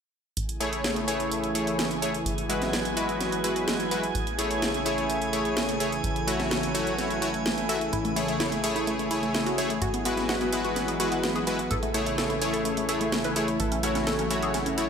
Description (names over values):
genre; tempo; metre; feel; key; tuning
progressive house; 127 BPM; 4/4; straight; A major; A4 = 440 Hz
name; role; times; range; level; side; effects
lush unison pad; sustained chords; 0.4-14.9 s; C#3 to G#4; -31 LUFS; right 1 dB; chorus
plucky analog bass; bass; 0.4-14.9 s; G#1 to A1; -37 LUFS; equal; none
house drum kit; drums; 0.4-14.9 s; hi-hat, snare drum; -31 LUFS; right 2 dB; none
drifting glass-harmonics texture; texture; 1.0-14.9 s; G#5; -37 LUFS; right 4 dB; chorus, built-in reverb
supersaw stab; stabs; 0.6-14.8 s; G#3 to E5; -29 LUFS; left 2 dB; tape echo
glassy wavetable pluck; arpeggios; 7.9-14.8 s; A3 to B4; -30 LUFS; left 1 dB; chorus, tape echo
room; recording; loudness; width
moderate lush hall reverb, RT60 2.2 s; none; -24 LUFS; side -7 dB against mid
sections
0.4-14.9 A section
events
none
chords
0.4 Amaj7; 2.3 Eadd9/G#; 4.2 Amaj7; 6.0 F#m7/A; 7.9 Amaj7; 9.8 Eadd9/G#; 11.7 Amaj7; 13.6 F#m7/A